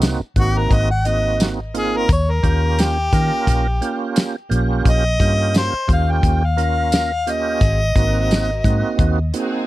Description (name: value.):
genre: straight-eighth soul blues.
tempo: 87 BPM.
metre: 4/4.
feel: swing 54% on 16ths.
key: Eb mixolydian.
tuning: A4 = 444 Hz.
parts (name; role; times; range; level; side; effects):
tonewheel organ; accompaniment; 0.0-9.7 s; Bb3 to Bb4; -23 LUFS; right 5 dB; overdrive, chorus vibrato, slow rotary speaker.
vintage muted fingered electric bass; bass; 0.0-9.3 s; Ab1 to Eb3; -19 LUFS; equal; none.
damped 70s drum kit; drums; 0.0-9.5 s; hi-hat, kick drum, snare drum, tambourine; -18 LUFS; equal; none.
warm harmonica; melody; 0.4-9.3 s; Gb4 to G5; -22 LUFS; left 2 dB; overdrive.
clear symphonic string section; sustained chords; 7.6-9.7 s; C4 to Bb4; -31 LUFS; left 1 dB; none.
room: little or no reverb.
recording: dry, close 1970s-style studio recording.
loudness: -15 LUFS.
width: side -16 dB against mid.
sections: 0.0-9.7 A section.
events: harmonica solo 0.0-9.7.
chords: 0.0 Ab7; 2.1 Eb7; 7.6 Ab7.